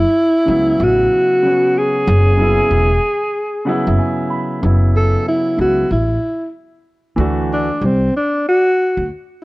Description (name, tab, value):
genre	hip hop, jazz-hop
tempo	94 BPM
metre	4/4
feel	swing 63% on 16ths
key	F# minor from 4.6 s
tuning	A4 = 440 Hz
part	dark alto saxophone	melody	0.0-9.1 s	C4 to A4	-15 LUFS	equal	none
part	upright bass	bass	0.0-9.1 s	E1 to D2	-16 LUFS	equal	none
part	dark baby grand piano	accompaniment	0.5-7.7 s	C#3 to B5	-20 LUFS	equal	none
room	light reverb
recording	worn, warbling old tape, cassette tape, warbly pitch drift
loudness	-13 LUFS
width	side -21 dB against mid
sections	0.0-4.6 A section; 4.6-9.4 B section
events	grand piano fill 3.4-4.6; alto saxophone solo 4.6-9.4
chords	0.0 F#7sus2; 4.6 F#7(no3); 7.2 Dadd9